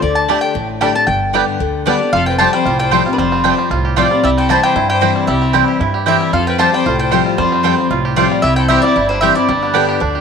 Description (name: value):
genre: bluegrass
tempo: 228 BPM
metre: 4/4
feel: straight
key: unclear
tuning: A4 = 439 Hz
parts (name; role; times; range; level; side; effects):
- mandolin; melody; 0.0-10.2 s; B4 to A5; -17 LUFS; left 1 dB; none
- picked steel-string acoustic guitar; accompaniment; 0.0-10.2 s; F2 to G4; -18 LUFS; left 8 dB; none
- upright bass; bass; 0.0-10.2 s; F1 to G2; -21 LUFS; right 2 dB; none
- bluegrass banjo; melody; 0.3-10.2 s; G3 to G4; -20 LUFS; right 7 dB; none
- mandolin; stabs; 0.3-9.8 s; A3 to A5; -19 LUFS; right 13 dB; none
- clear fiddle; second line; 1.9-10.2 s; D4 to C5; -23 LUFS; left 7 dB; none
room: light reverb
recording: 1960s-style stereo with parts hard left and right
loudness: -12 LUFS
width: side -6 dB against mid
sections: 0.0-2.1 A section; 2.1-10.2 B section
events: none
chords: 0.0 Dsus4; 1.1 G; 2.1 Fadd9; 4.2 C; 6.3 Fadd9; 8.4 C; 9.5 G